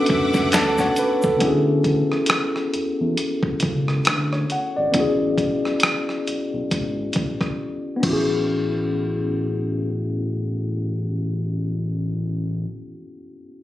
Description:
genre	R&B, neo-soul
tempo	68 BPM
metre	4/4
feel	swing 57% on 16ths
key	A major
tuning	A4 = 442 Hz
part	tine electric piano	accompaniment	0.0-13.6 s	B3 to A5	-22 LUFS	left 1 dB	medium stereo tremolo, plate reverb
part	clear symphonic string section	sustained chords	0.0-1.4 s	A3 to D6	-26 LUFS	equal	plate reverb
part	smooth synth bass	bass	0.1-12.7 s	G#1 to F#2	-25 LUFS	equal	none
part	dusty soul sampler-style drum kit	drums	0.1-8.3 s	crash cymbal, hi-hat, kick drum, rim click, snare drum	-23 LUFS	equal	none
part	egg shaker and finger snaps	percussion	0.3-1.4 s	none	-30 LUFS	right 2 dB	none
room	light reverb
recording	recorded on a phone in the room, studio reverb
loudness	-19 LUFS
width	side -14 dB against mid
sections	0.0-1.4 A section; 1.4-8.5 B section; 8.5-12.0 C section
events	tine electric piano fill 0.1-1.4; silent gap 7.6-8.5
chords	0.0 E9sus4; 1.4 Dmaj13; 8.5 Amaj9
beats	0.53 | 1.41 2.29 3.17 4.06 | 4.94 5.82 6.70 7.59 | 8.47 9.35 10.23 11.12

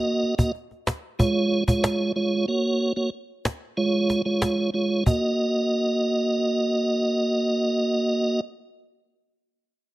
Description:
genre	dancehall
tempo	93 BPM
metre	4/4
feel	straight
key	Eb minor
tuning	A4 = 440 Hz
part	tonewheel organ	accompaniment	0.0-8.4 s	Ab3 to Eb5	-22 LUFS	right 1 dB	chorus vibrato
part	cajon	drums	0.2-5.2 s	none	-22 LUFS	equal	none
room	digital ambience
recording	none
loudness	-22 LUFS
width	side -17 dB against mid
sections	0.0-5.1 A section; 5.1-7.6 B section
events	kick muted 2.5-5.1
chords	0.0 Ebm; 1.2 Db; 2.5 Gb; 3.8 Db; 5.1 Ebm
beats	0.55 1.19 1.84 | 2.48 3.13 3.77 4.42 | 5.06 5.71 6.35 7.00

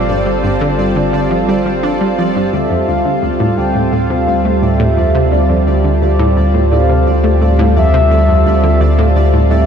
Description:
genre	ambient, sequencer-driven space music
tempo	86 BPM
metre	4/4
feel	straight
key	D minor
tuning	A4 = 439 Hz
part	mellow horn-like synth lead	melody	0.0-9.7 s	D5 to G5	-19 LUFS	left 1 dB	chorus, tape echo
part	lush unison pad	sustained chords	0.0-9.7 s	G3 to A4	-15 LUFS	right 1 dB	chorus
part	round analog bass	bass	0.0-9.7 s	G1 to D2	-14 LUFS	equal	none
part	pulsing gated texture	texture	0.0-9.7 s	D5	-27 LUFS	right 3 dB	chorus, built-in reverb
part	analog pluck	riff	0.1-9.6 s	D2 to D4	-17 LUFS	equal	chorus, tape echo
room	moderate lush hall reverb, RT60 3.3 s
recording	dreamy mix soaked in reverb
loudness	-10 LUFS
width	side -7 dB against mid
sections	0.0-2.5 A section; 2.5-9.7 B section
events	none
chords	0.0 G7(no3); 2.5 Dm7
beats	0.44 1.14 1.83 | 2.53 3.23 3.93 4.62 | 5.32 6.02 6.72 7.41 | 8.11 8.81 9.51

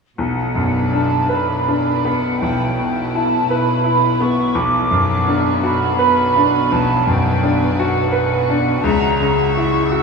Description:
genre	classical, romantic movement for piano and orchestra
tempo	53-58 BPM (dotted quarters)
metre	12/8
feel	rubato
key	B minor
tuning	A4 = 440 Hz
part	bright grand piano	melody	0.2-10.0 s	B1 to B4	-17 LUFS	left 1 dB	none
part	mellow flute section	second line	0.2-10.0 s	F#5 to E6	-20 LUFS	right 2 dB	none
part	warm symphonic cello section	bass	0.2-10.0 s	B2 to C#3	-24 LUFS	right 3 dB	none
part	warm chamber violin section	second line	0.6-10.0 s	D4 to E5	-26 LUFS	left 1 dB	none
room	wet concert hall reverb, RT60 2.5 s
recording	small room ambience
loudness	-14 LUFS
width	side -4 dB against mid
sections	0.2-10.0 A section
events	none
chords	0.2 Bm; 8.8 F#7/C#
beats	| 0.16 1.29 2.41 3.49 | 4.55 5.63 6.71 7.77 | 8.83 9.90

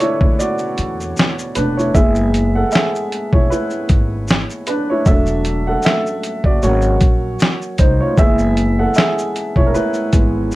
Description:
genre	lo-fi hip hop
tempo	77 BPM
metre	4/4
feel	swing 56% on 16ths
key	F# minor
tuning	A4 = 441 Hz
part	dark upright piano	accompaniment	0.0-10.6 s	D3 to F#5	-18 LUFS	right 1 dB	cassette tape, plate reverb
part	dusty soul sampler-style drum kit	drums	0.0-10.6 s	hi-hat, kick drum, shaker, snare drum	-15 LUFS	equal	none
part	upright bass	bass	0.2-10.6 s	E1 to E2	-19 LUFS	equal	none
room	light reverb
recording	cassette tape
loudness	-14 LUFS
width	side -18 dB against mid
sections	0.0-1.9 A section; 1.9-10.6 B section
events	upright piano solo 0.0-1.9, 1.9-10.6; break 0.4-1.9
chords	0.0 Bm9; 1.9 F#9sus4; 5.1 E9sus4; 6.6 G#9sus4; 8.2 F#9sus4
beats	0.39 1.17 | 1.95 2.73 3.50 4.28 | 5.06 5.84 6.62 7.40 | 8.18 8.96 9.74 10.52

